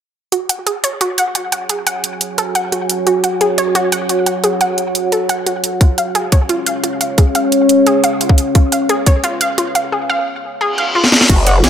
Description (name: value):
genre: dark technical drum and bass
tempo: 175 BPM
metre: 4/4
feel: straight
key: unclear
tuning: A4 = 436 Hz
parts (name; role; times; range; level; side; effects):
- deep dark ambient pad; sustained chords; 1.8-11.7 s; C#4 to G#5; -17 LUFS; equal; chorus, built-in reverb, sidechain pumping
- analog pluck; arpeggios; 0.3-11.7 s; E#4 to F#5; -17 LUFS; equal; chorus, sidechain pumping, dub echo
- drum and bass drum kit; drums; 0.3-11.7 s; crash cymbal, hi-hat, snare drum; -15 LUFS; right 1 dB; overdrive
- electronic kick drum; drums; 5.8-9.1, 11.3-11.4 s; none; -10 LUFS; equal; overdrive
- reverse cymbal; sound effects; 10.7-11.3 s; none; -17 LUFS; left 1 dB; none
- growl bass; bass; 11.3-11.7 s; F#1 to A1; -12 LUFS; equal; chorus, overdrive
- jungle sampler-style drum kit; drums; 11.3-11.7 s; hi-hat, snare drum; -21 LUFS; equal; overdrive, high-pass filter on hats, high-pass filter on snare
room: moderate lush hall reverb, RT60 1.7 s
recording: none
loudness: -12 LUFS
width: side -9 dB against mid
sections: 0.3-11.3 A section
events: filter sweep on synth arpeggio sound 0.3-11.3; reverse cymbal 10.7-11.3; drum fill 11.0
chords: 0.3 F#5; 5.8 C#